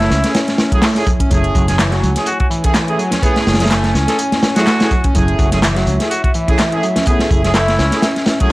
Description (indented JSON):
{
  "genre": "breakbeat, breaks",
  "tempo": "125 BPM",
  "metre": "4/4",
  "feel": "swing 55% on 16ths",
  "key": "F# minor",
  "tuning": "A4 = 440 Hz",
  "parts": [
    { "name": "bright alto saxophone", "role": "melody", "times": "0.0-8.2 s", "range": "E4 to A4", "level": "-23 LUFS", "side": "equal", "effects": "telephone sound, analog delay" },
    { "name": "dark analog pad", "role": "sustained chords", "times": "0.0-8.5 s", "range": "A3 to G#5", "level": "-23 LUFS", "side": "equal", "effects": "chorus, vintage 12-bit sampler grit, sidechain pumping" },
    { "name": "overdriven synth lead", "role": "riff", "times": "0.0-8.5 s", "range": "E3 to C#4", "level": "-21 LUFS", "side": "equal", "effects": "distortion" },
    { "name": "fingered electric bass", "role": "bass", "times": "0.0-7.9 s", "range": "F#1 to C#2", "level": "-17 LUFS", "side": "equal", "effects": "none" },
    { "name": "crunchy breakbeat drum kit", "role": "drums", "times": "0.0-8.5 s", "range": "hi-hat, kick drum, snare drum", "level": "-16 LUFS", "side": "equal", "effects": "none" },
    { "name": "house drum kit", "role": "drums", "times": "0.0-8.5 s", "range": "handclaps, hi-hat", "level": "-24 LUFS", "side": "equal", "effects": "overdrive" },
    { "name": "bongos and congas", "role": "percussion", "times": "0.0-8.4 s", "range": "none", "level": "-26 LUFS", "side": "right 2 dB", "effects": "none" },
    { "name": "mellow brass ensemble", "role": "stabs", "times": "0.2-8.5 s", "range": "A3 to G#4", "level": "-21 LUFS", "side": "right 2 dB", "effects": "analog delay" }
  ],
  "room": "small room ambience",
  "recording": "dry, gritty hardware recording, vinyl crackle",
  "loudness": "-12 LUFS",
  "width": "side -19 dB against mid",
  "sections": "0.0-8.5 A section",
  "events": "none",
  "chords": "0.0 F#m7"
}